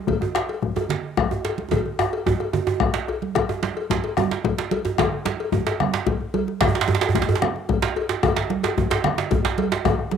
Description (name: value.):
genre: west african traditional, West African drum ensemble.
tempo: 147 BPM (dotted quarters).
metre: 12/8.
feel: straight.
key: none.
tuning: none.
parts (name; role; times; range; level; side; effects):
bombo; percussion; 0.1-10.1 s; none; -24 LUFS; left 6 dB; none.
congas; percussion; 0.1-10.2 s; none; -27 LUFS; right 8 dB; none.
cowbell; percussion; 0.1-10.0 s; none; -29 LUFS; left 7 dB; none.
djembe; percussion; 0.1-10.2 s; none; -29 LUFS; left 3 dB; none.
djembe; percussion; 0.2-10.0 s; none; -24 LUFS; right 6 dB; none.
room: moderate spring reverb, RT60 1.2 s.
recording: home recording on cassette.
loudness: -20 LUFS.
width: side -8 dB against mid.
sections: 0.0-3.4 A section; 3.4-10.2 B section.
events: drum fill 1.7-3.4, 9.4-9.9.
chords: none.